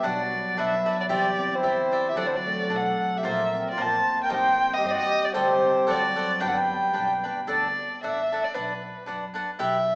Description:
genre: mexican folk, mariachi.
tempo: 113 BPM.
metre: 2/4.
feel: swing 55% on 8ths, rubato.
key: G major.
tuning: A4 = 439 Hz.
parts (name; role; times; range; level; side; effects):
dark violin; melody; 0.0-10.0 s; B4 to A5; -24 LUFS; equal; none.
mellow trumpet; second line; 0.0-7.3 s; E4 to C5; -32 LUFS; equal; none.
cavaquinho; accompaniment; 0.0-9.8 s; D4 to G5; -29 LUFS; equal; none.
concert harp; arpeggios; 0.0-9.8 s; E3 to C4; -30 LUFS; equal; none.
upright bass; bass; 0.0-9.9 s; G1 to G2; -42 LUFS; equal; none.
room: wet recital hall reverb, RT60 1.8 s.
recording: recorded in a church or concert hall, small speaker sound.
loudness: -22 LUFS.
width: side -34 dB against mid.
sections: 0.0-7.5 A section; 7.5-10.0 B section.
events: none.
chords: 0.0 Bm; 1.1 Cadd9; 2.2 D; 3.2 Bbadd9; 4.3 Cm; 5.4 D7sus4; 5.9 D7; 6.4 G; 7.5 D; 8.6 Bm.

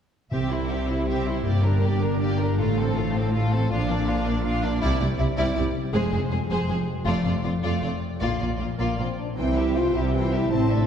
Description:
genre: cinematic.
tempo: 106 BPM (dotted quarters).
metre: 6/8.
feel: straight.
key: C mixolydian.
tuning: A4 = 440 Hz.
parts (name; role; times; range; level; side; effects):
rich studio violin section; melody; 0.3-10.9 s; A4 to A5; -35 LUFS; left 2 dB; none.
clear studio violin section; second line; 0.3-10.9 s; D4 to C5; -31 LUFS; left 2 dB; none.
rich symphonic viola section; accompaniment; 0.3-10.9 s; E3 to E4; -31 LUFS; equal; none.
concert harp; arpeggios; 0.3-10.9 s; F2 to D5; -30 LUFS; left 3 dB; none.
rich studio cello section; bass; 0.3-10.9 s; F2 to C3; -28 LUFS; right 2 dB; none.
rich symphonic double bass section; bass; 0.3-10.9 s; F1 to C2; -27 LUFS; right 1 dB; none.
timpani; percussion; 0.3-0.8 s; C3; -31 LUFS; right 5 dB; none.
mellow French horn section; sustained chords; 8.8-10.9 s; Bb3 to F4; -26 LUFS; equal; none.
room: wet scoring stage reverb, RT60 1.8 s.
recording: heard from further back in the room.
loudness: -22 LUFS.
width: side -8 dB against mid.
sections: 0.3-9.4 A section; 9.4-10.9 B section.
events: build-up 0.3-9.4.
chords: 0.3 C; 1.5 Gm; 2.6 F/A; 3.7 Bb; 4.8 Cadd9; 5.9 Fmadd9; 7.1 Dm/F; 8.2 Bb; 9.4 C.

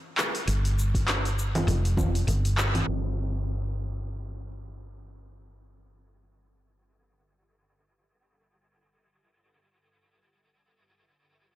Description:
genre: organic downtempo.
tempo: 100 BPM.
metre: 4/4.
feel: swing 58% on 16ths.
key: unclear.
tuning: A4 = 438 Hz.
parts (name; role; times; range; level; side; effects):
deep house drum kit; drums; 0.2-2.9 s; congas, handclaps, hi-hat, shaker; -30 LUFS; equal; overdrive.
woody fretless electric bass; bass; 0.5-11.6 s; F1 to G1; -27 LUFS; equal; transformer saturation, analog chorus.
electronic kick drum; drums; 0.9-2.1 s; none; -28 LUFS; equal; overdrive.
room: light reverb.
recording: blown-out, overdriven recording, overdrive, low-pass filter.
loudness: -24 LUFS.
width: side -15 dB against mid.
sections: 0.0-2.9 A section; 2.9-11.6 B section.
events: band accent 2.6.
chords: none.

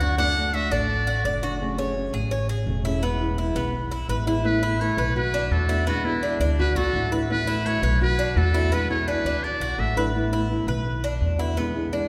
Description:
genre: latin.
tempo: 169 BPM.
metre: 4/4.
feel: straight.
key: A major.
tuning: A4 = 436 Hz.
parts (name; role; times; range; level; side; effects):
trumpet with metal mute; melody; 0.0-1.4, 4.5-10.1 s; E4 to F#5; -29 LUFS; equal; none.
flamenco guitar; second line; 0.0-1.4, 4.4-10.1 s; B3 to D5; -35 LUFS; equal; none.
fingerpicked old ladder-braced acoustic guitar; accompaniment; 0.0-12.1 s; B2 to G#4; -31 LUFS; equal; none.
Cuban tres; arpeggios; 0.0-12.1 s; B3 to D5; -31 LUFS; equal; none.
upright bass; bass; 0.0-12.0 s; E1 to E2; -28 LUFS; equal; none.
room: wet church reverb, RT60 3.0 s.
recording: recorded in a church or concert hall.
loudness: -24 LUFS.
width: mono.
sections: 0.0-4.4 A section; 4.4-12.1 B section.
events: none.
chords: 0.2 D; 1.6 F#madd9; 3.0 E; 4.4 Asus2; 5.2 Bm7; 5.9 E7; 6.6 Dadd9; 7.3 Asus2; 8.0 Bm7; 8.7 E7; 9.4 Dadd9; 10.1 Asus2; 10.9 Bm7; 11.6 E7.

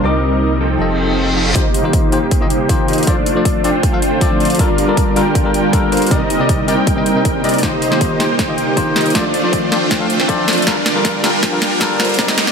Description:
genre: future bass.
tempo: 158 BPM.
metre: 4/4.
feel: half-time.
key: G minor.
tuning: A4 = 445 Hz.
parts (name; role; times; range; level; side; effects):
bell-like tine electric piano; accompaniment; 0.0-12.5 s; C3 to D6; -20 LUFS; left 4 dB; sidechain pumping, ping-pong delay.
airy breathy pad; sustained chords; 0.0-12.5 s; C3 to F4; -25 LUFS; right 1 dB; none.
supersaw chords; riff; 0.0-12.5 s; F3 to G5; -16 LUFS; right 1 dB; sidechain pumping, low-pass filter, ping-pong delay.
saturated sub bass; bass; 0.0-12.5 s; Eb1 to F2; -27 LUFS; equal; none.
reverse cymbal and riser; sound effects; 0.9-12.5 s; none; -26 LUFS; equal; none.
electronic kick drum; drums; 1.6-12.3 s; none; -18 LUFS; equal; overdrive.
trap drum kit; drums; 1.6-12.5 s; hi-hat, snare drum; -20 LUFS; left 1 dB; overdrive.
room: moderate digital room reverb, RT60 0.9 s, digital ambience.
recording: high-pass filter.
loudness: -12 LUFS.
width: side -6 dB against mid.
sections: 0.0-1.6 A section; 1.6-12.5 B section.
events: reverse cymbal 0.9-1.6; build-up 1.6-12.5; filter sweep on supersaw synth 1.6-12.5; filter sweep 1.6-12.5; drum fill 7.6-12.5.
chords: 0.0 Cm7; 0.8 F7; 1.6 Eb6; 3.1 Dm7/F; 4.6 Gm7; 6.1 Cm7; 7.6 Eb6; 9.2 Dm7/F; 10.7 Gm7.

